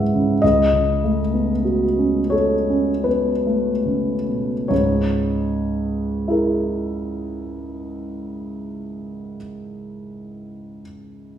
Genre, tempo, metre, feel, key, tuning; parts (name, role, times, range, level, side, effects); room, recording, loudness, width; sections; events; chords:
classical, impressionist solo piano; 35-53 BPM; 3/4; rubato; C# dorian; A4 = 440 Hz
warm concert grand piano; solo; 0.0-11.4 s; C#2 to F#5; -19 LUFS; equal
wet recital hall reverb, RT60 1.5 s; heard from further back in the room; -18 LUFS; side -10 dB against mid
0.0-4.7 A section; 4.7-9.3 B section
slowing down 0.0-4.7
0.4 B9/C#; 4.7 C#m6